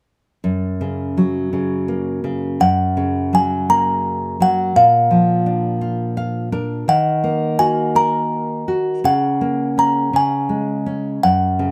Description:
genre	children's music, lullaby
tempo	56 BPM (dotted quarters)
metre	6/8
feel	rubato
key	F# major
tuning	A4 = 442 Hz
part	nylon-string guitar	accompaniment	0.4-11.7 s	F#2 to E#5	-21 LUFS	equal	none
part	music box	melody	2.6-11.7 s	E#5 to A#5	-19 LUFS	equal	plate reverb
room	light reverb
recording	none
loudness	-18 LUFS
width	mono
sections	0.4-2.6 A section; 2.6-11.7 B section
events	nylon-string guitar fill 5.8-6.9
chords	0.4 F#; 4.8 A#; 6.9 D#m; 9.0 F#/C#; 10.1 C#5

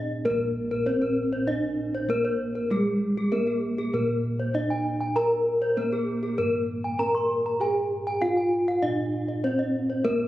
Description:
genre	Balinese gamelan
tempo	98 BPM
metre	4/4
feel	straight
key	Bb slendro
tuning	A4 = 440 Hz
part	gamelan-type bronze metallophone	melody	0.0-10.3 s	Ab3-45c to Bb4	-26 LUFS	right 1 dB	tape echo
part	gamelan-type bronze metallophone	arpeggios	0.0-10.2 s	Ab4-45c to C6+30c	-28 LUFS	left 2 dB	none
part	gamelan-type bossed gongs	bass	0.0-10.3 s	Bb1 to Bb4	-33 LUFS	equal	none
room	moderate concert hall reverb, RT60 2.3 s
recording	recorded on a phone in the room, club reverb, compression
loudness	-23 LUFS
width	side -14 dB against mid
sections	0.3-10.3 A section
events	none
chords	none

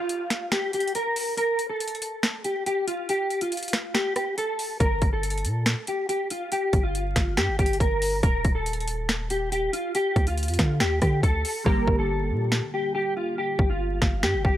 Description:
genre	hip hop, trap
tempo	140 BPM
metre	4/4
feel	half-time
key	G minor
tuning	A4 = 439 Hz
part	mellow electric guitar	melody	0.0-14.6 s	F4 to Bb4	-26 LUFS	equal	ensemble chorus, low-pass filter
part	downlifter	sound effects	0.0-1.4 s	none	-51 LUFS	equal	none
part	trap drum kit	drums	0.1-14.5 s	finger snaps, hi-hat, kick drum, rim click, snare drum	-25 LUFS	equal	overdrive
part	long sustained 808-style bass	bass	4.8-14.6 s	Eb1 to D3	-27 LUFS	equal	none
part	glassy digital keys	accompaniment	11.6-14.6 s	D3 to G4	-30 LUFS	equal	chorus, low-pass filter
room	little or no reverb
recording	dry, gritty hardware recording, vinyl crackle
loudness	-23 LUFS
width	side -12 dB against mid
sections	0.0-14.6 A section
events	break 0.0-4.8; hi-hats muted 11.7-14.6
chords	0.0 N.C.; 4.8 Gm; 8.2 Eb; 9.9 Dm; 11.7 Gm

